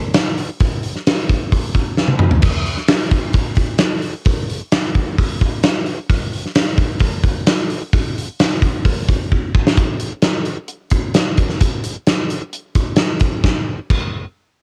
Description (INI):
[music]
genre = rock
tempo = 131 BPM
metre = 4/4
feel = straight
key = none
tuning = none
[part]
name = gated 80s drum kit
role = drums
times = 0.1-14.0 s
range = crash cymbal, hi-hat, kick drum, snare drum, toms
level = -17 LUFS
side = equal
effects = none
[sound]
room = light reverb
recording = home recording on cassette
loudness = -18 LUFS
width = mono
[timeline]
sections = 0.0-9.8 A section; 9.8-13.4 B section; 13.4-14.6 C section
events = drum fill 2.0-2.4, 9.3-9.8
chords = none